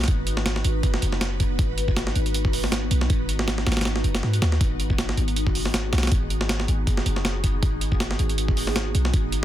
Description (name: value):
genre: drum and bass, jungle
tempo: 159 BPM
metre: 4/4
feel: swing 55% on 16ths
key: G# minor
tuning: A4 = 436 Hz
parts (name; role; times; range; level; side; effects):
- ethereal airy pad; sustained chords; 0.0-9.4 s; B3 to B4; -30 LUFS; equal; ensemble chorus, built-in reverb, phaser
- warm 808-style bass; bass; 0.0-9.4 s; F#1 to G#2; -24 LUFS; equal; none
- breakbeat sampler-style drum kit; drums; 0.0-9.4 s; hi-hat, kick drum, snare drum; -24 LUFS; equal; none
room: little or no reverb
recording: dense, heavily limited modern master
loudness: -21 LUFS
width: side -12 dB against mid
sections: 0.0-9.4 A section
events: none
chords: 0.0 G#m7